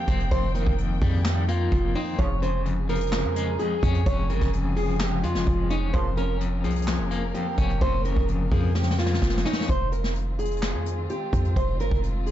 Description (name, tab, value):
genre	hip hop, trap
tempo	128 BPM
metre	4/4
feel	half-time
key	F minor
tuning	A4 = 440 Hz
part	fingerpicked old ladder-braced acoustic guitar	melody	0.0-12.3 s	Eb4 to Db5	-30 LUFS	right 2 dB	none
part	electric guitar at the edge of break-up	accompaniment	0.0-9.7 s	F2 to Db4	-29 LUFS	left 5 dB	tremolo
part	warm studio string section	sustained chords	0.0-12.3 s	Eb3 to G5	-36 LUFS	left 1 dB	none
part	hard-hitting 808-style bass	bass	0.1-12.3 s	F1 to F2	-26 LUFS	equal	none
part	soft brush drum kit	drums	0.1-12.3 s	handclaps, hi-hat, kick drum, snare drum	-27 LUFS	equal	none
part	warm brass ensemble	stabs	2.2-2.3, 5.9-6.1 s	Ab2 to F3	-38 LUFS	right 4 dB	ping-pong delay
room	small room ambience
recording	dark, warm production, nothing above 7.7 kHz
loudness	-22 LUFS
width	side -12 dB against mid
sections	0.0-9.7 A section; 9.7-12.3 B section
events	drum fill 8.8-9.7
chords	0.0 Cm7/F; 2.2 Db/F; 5.9 Bbm/F; 9.7 Fm7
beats	| 0.31 0.78 1.25 1.72 | 2.19 2.66 3.13 3.60 | 4.06 4.53 5.00 5.47 | 5.94 6.41 6.88 7.34 | 7.81 8.28 8.75 9.22 | 9.69 10.16 10.63 11.10 | 11.56 12.03